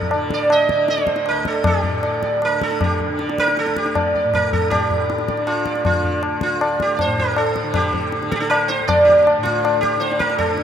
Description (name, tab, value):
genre	indian classical, Hindustani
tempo	158 BPM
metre	4/4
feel	straight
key	D raga bhairavi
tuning	A4 = 443 Hz
part	sitar	melody	0.0-10.6 s	F4 to Eb5	-18 LUFS	right 2 dB	none
part	tanpura	drone	0.0-10.6 s	D2 to D3	-26 LUFS	equal	none
part	tabla	percussion	0.0-10.6 s	none	-22 LUFS	left 3 dB	none
room	wet huge ambient reverb, RT60 8.3 s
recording	in a vast, echoing space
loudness	-16 LUFS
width	side -8 dB against mid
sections	0.0-4.7 A section; 4.7-10.6 B section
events	none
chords	none